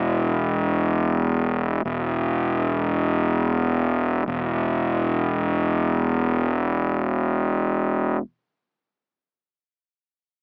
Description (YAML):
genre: rock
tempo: 50 BPM (dotted quarters)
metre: 6/8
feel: straight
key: unclear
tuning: A4 = 440 Hz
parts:
  - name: fuzz fingered electric bass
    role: bass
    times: 0.0-8.2 s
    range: E1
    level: -23 LUFS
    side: equal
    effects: overdrive
room: little or no reverb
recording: small speaker sound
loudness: -23 LUFS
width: mono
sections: 0.0-4.3 A section; 4.3-6.7 B section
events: none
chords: none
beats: 0.64 | 1.85 3.06 | 4.28 5.49